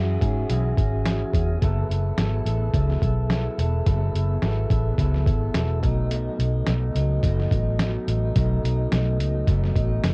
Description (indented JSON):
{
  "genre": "indie pop, bedroom pop",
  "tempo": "107 BPM",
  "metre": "4/4",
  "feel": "swing 55% on 16ths",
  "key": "unclear",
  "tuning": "A4 = 440 Hz",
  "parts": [
    { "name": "electric guitar through a small old amp", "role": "accompaniment", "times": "0.0-10.1 s", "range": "B2 to A4", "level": "-35 LUFS", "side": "equal", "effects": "lush chorus, vibrato effect, cassette tape" },
    { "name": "mellow tonewheel organ", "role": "accompaniment", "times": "0.0-10.1 s", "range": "B3 to E5", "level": "-33 LUFS", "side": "equal", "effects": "fast rotary speaker, cassette tape" },
    { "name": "vintage muted fingered electric bass", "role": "bass", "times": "0.0-10.1 s", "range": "E1 to G#2", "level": "-25 LUFS", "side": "equal", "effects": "none" },
    { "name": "lo-fi sampler-style drum kit", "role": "drums", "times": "0.2-10.1 s", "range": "hi-hat, kick drum, snare drum", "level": "-27 LUFS", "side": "equal", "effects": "overdrive, cassette tape" }
  ],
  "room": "little or no reverb",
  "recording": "home recording on cassette",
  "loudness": "-23 LUFS",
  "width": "mono",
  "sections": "0.0-1.6 A section; 1.6-10.1 B section",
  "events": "none",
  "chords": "0.0 E69; 1.6 F#m11; 5.8 B7"
}